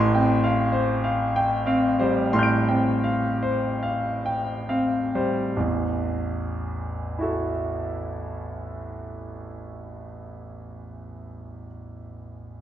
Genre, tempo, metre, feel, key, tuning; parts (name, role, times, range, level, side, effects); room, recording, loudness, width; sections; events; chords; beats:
classical, impressionist solo piano; 32-53 BPM; 4/4; rubato; A4 = 440 Hz
clear concert grand piano; solo; 0.0-12.6 s; A1 to D7; -23 LUFS; equal
moderate scoring stage reverb, RT60 1.5 s; nothing above 7.7 kHz, faint mains hum; -22 LUFS; side -11 dB against mid
0.0-5.6 A section; 5.6-12.0 B section
slowing down 0.0-5.6
0.0 G9sus4/A; 5.6 A5
1.03 2.33 3.82 | 5.56 7.17 8.83 10.42